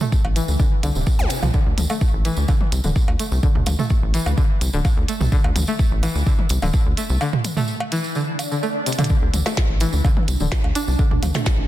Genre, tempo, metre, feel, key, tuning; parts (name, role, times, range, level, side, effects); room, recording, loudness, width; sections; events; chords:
minimal techno; 127 BPM; 4/4; straight; A4 = 437 Hz
string-like resonator pluck; riff; 0.0-11.4 s; C3 to D4; -26 LUFS; left 1 dB; chorus, sidechain pumping, tape echo
electronic toms and cowbell; percussion; 0.0-11.4 s; -27 LUFS; right 2 dB; ping-pong delay
tambourine; percussion; 0.0-11.6 s; -33 LUFS; right 2 dB
electronic kick drum; drums; 0.1-11.6 s; -19 LUFS; equal
rubbery square bass; bass; 0.2-11.7 s; D1 to D2; -21 LUFS; equal; sidechain pumping
minimal click drum kit; drums; 0.4-11.6 s; hi-hat, snare drum; -27 LUFS; right 1 dB
zap and swell; sound effects; 1.2-1.3, 8.3-9.1 s; -29 LUFS; left 1 dB
swarming drone; texture; 9.8-11.7 s; D4; -34 LUFS; right 4 dB; built-in reverb, sidechain pumping
light reverb; dense, heavily limited modern master; -17 LUFS; side -14 dB against mid
0.0-11.7 A section
break 7.2-9.1; swell 8.3-9.1; drum fill 8.9
0.0 D5